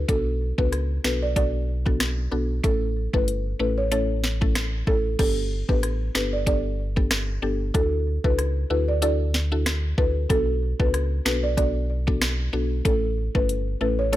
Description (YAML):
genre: dancehall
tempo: 94 BPM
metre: 4/4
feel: swing 56% on 16ths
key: B minor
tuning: A4 = 442 Hz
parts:
  - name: sub bass with octave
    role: bass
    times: 0.0-14.2 s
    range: G1 to D2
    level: -26 LUFS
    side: equal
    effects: none
  - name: buzzing marimba with soft mallets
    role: melody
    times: 0.1-14.2 s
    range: A4 to D5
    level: -27 LUFS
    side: right 1 dB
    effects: none
  - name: mallet-like synth pluck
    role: accompaniment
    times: 0.1-14.2 s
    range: A3 to A4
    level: -30 LUFS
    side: left 2 dB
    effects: chorus
  - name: afro-pop drum kit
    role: drums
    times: 0.1-14.2 s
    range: crash cymbal, finger snaps, hi-hat, kick drum, rim click, snare drum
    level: -24 LUFS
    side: equal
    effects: none
room: little or no reverb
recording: none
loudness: -21 LUFS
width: side -14 dB against mid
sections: 0.0-5.2 A section; 5.2-14.2 B section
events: none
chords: 0.1 Bm7; 2.6 A; 5.2 Gadd9; 7.7 Dadd9; 10.3 Bm7; 12.9 A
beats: | 0.09 0.72 1.36 2.00 | 2.64 3.28 3.92 4.55 | 5.19 5.83 6.47 7.11 | 7.75 8.38 9.02 9.66 | 10.30 10.94 11.58 12.21 | 12.85 13.49 14.13